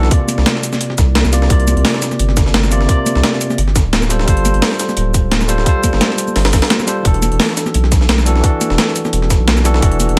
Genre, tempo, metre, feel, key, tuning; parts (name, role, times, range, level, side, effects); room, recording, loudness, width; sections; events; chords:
liquid drum and bass; 173 BPM; 4/4; swing 54% on 16ths; A4 = 441 Hz
barky tine electric piano; accompaniment; 0.0-10.2 s; C3 to D5; -21 LUFS; equal; tape echo
saturated sub bass; bass; 0.0-10.2 s; D1 to C2; -17 LUFS; equal
breakbeat sampler-style drum kit; drums; 0.0-10.2 s; hi-hat, snare drum; -23 LUFS; equal; high-pass filter on hats, high-pass filter on snare
breakbeat sampler-style drum kit; drums; 0.1-10.1 s; cabasa, hi-hat, snare drum; -20 LUFS; equal; overdrive
electronic kick drum; drums; 0.1-9.9 s; -16 LUFS; equal
congas; percussion; 0.3-10.1 s; -27 LUFS; equal
little or no reverb; -14 LUFS; mono
0.0-10.2 A section
break 6.7-7.0
0.1 C9sus4; 3.6 G9sus4; 7.0 E9sus4